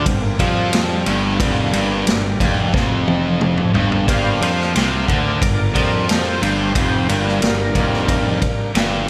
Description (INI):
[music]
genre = blues rock power trio and southern rock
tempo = 90 BPM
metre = 4/4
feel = straight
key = G minor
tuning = A4 = 440 Hz
[part]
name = overdriven tonewheel organ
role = sustained chords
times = 0.0-8.7 s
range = F#3 to F5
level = -26 LUFS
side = equal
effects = chorus vibrato, slow rotary speaker
[part]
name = distorted electric guitar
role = riff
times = 0.0-9.1 s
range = F2 to F3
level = -22 LUFS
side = equal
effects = overdrive, slapback echo
[part]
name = fuzz picked electric bass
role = bass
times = 0.0-9.1 s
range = F1 to F2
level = -25 LUFS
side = equal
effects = overdrive
[part]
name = vintage drum kit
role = drums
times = 0.1-8.9 s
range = kick drum, ride cymbal, snare drum, toms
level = -22 LUFS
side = equal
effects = none
[sound]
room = moderate concert hall reverb, RT60 2.2 s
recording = big arena sound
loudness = -18 LUFS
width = mono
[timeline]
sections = 0.0-4.1 A section; 4.1-9.1 A section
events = tonewheel organ solo 0.0-9.1; drum fill 2.7-4.1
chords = 0.0 Gm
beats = 0.06 0.73 | 1.40 2.07 2.74 3.41 | 4.08 4.75 5.42 6.08 | 6.75 7.42 8.09 8.76